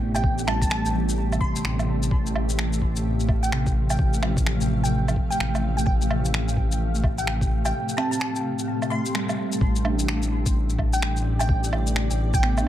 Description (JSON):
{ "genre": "future garage", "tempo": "128 BPM", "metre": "4/4", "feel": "swing 62% on 16ths", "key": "A minor", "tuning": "A4 = 440 Hz", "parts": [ { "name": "mellow tine electric piano", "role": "accompaniment", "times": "0.0-12.7 s", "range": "C3 to D4", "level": "-30 LUFS", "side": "right 3 dB", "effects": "sidechain pumping, low-pass filter, analog delay" }, { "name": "granular cloud pad", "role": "sustained chords", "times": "0.0-12.7 s", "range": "A2 to F5", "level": "-29 LUFS", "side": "left 1 dB", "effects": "built-in reverb, sidechain pumping" }, { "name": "dark detuned saw bass", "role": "bass", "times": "0.0-12.7 s", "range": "A1", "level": "-25 LUFS", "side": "equal", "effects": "none" }, { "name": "glassy wavetable pluck", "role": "melody", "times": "0.1-12.7 s", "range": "G5 to C6", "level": "-31 LUFS", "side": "right 1 dB", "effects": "chorus, dub echo" }, { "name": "electronic kick drum", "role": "drums", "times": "0.2-12.4 s", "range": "none", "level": "-24 LUFS", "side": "equal", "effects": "overdrive, small room ambience" }, { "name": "electronic shaker, woodblock and finger snaps", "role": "drums", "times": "0.2-12.6 s", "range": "none", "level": "-30 LUFS", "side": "equal", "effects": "overdrive, small room ambience" } ], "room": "light reverb", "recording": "echo-heavy mix", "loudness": "-21 LUFS", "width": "side -12 dB against mid", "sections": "0.0-9.6 A section; 9.6-12.7 B section", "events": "filter sweep on tine electric piano 0.0-9.6; break 7.7-9.6; band accent 9.1", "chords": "0.0 Am11; 2.1 Fadd9/A; 9.6 Am11", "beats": "| 0.24 0.71 1.18 1.65 | 2.11 2.58 3.05 3.52 | 3.99 4.46 4.93 5.40 | 5.86 6.33 6.80 7.27 | 7.74 8.21 8.68 9.15 | 9.61 10.08 10.55 11.02 | 11.49 11.96 12.43" }